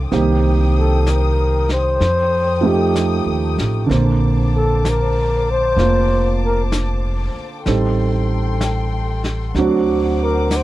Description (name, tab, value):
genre	jazz ballad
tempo	64 BPM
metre	4/4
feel	swing 67% on 8ths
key	unclear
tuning	A4 = 441 Hz
part	warm concert grand piano	accompaniment	0.0-10.6 s	D3 to E5	-20 LUFS	right 4 dB	none
part	warm studio string section	sustained chords	0.0-10.6 s	A4 to Eb6	-28 LUFS	left 6 dB	none
part	upright bass	bass	0.0-10.6 s	F1 to F2	-18 LUFS	equal	none
part	vintage brush drum kit	drums	0.1-10.6 s	brushed snare drum, hi-hat, snare drum	-28 LUFS	left 1 dB	none
part	breathy flugelhorn	melody	0.8-10.6 s	G4 to C5	-18 LUFS	left 2 dB	none
room	little or no reverb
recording	dry, close 1970s-style studio recording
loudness	-15 LUFS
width	side -16 dB against mid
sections	0.0-10.6 A section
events	flugelhorn solo 0.0-10.6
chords	0.1 Cm7; 2.0 F9; 3.9 Bbmaj9; 7.7 Am7b5; 9.6 D7